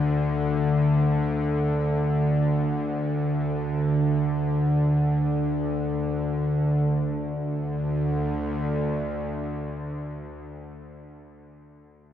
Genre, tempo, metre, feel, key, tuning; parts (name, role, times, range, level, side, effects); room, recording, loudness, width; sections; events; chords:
ambient; free time; A4 = 440 Hz
bowed-like drone; solo; 0.0-10.2 s; D2 to D3; -23 LUFS; equal; built-in reverb, diffuse ambient delay
wet cathedral reverb, RT60 5.4 s; -23 LUFS; side -10 dB against mid
0.0-6.9 A section; 6.9-10.5 B section